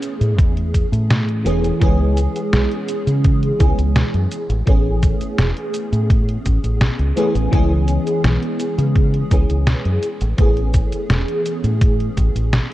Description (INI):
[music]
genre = vaporwave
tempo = 84 BPM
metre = 4/4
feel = straight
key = A major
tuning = A4 = 439 Hz
[part]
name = FM electric piano with soft pad layer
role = accompaniment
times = 0.0-12.7 s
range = E3 to G#4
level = -21 LUFS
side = equal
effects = phaser, ensemble chorus, analog delay
[part]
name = detuned 8-bit digital drum machine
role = drums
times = 0.0-12.7 s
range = cabasa, hi-hat, snare drum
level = -20 LUFS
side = equal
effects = vintage 12-bit sampler grit
[part]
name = deep dub fingered electric bass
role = bass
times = 0.2-12.6 s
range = E1 to C#3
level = -18 LUFS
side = equal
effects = none
[part]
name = electronic kick drum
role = drums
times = 0.4-12.3 s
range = none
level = -16 LUFS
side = equal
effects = vintage 12-bit sampler grit
[sound]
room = little or no reverb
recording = dark, warm production, cassette tape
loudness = -15 LUFS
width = side -15 dB against mid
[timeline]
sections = 0.0-12.7 A section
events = none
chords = 0.0 Amaj9; 1.8 C#m7; 4.3 Amaj9; 7.5 C#m7; 10.0 Amaj9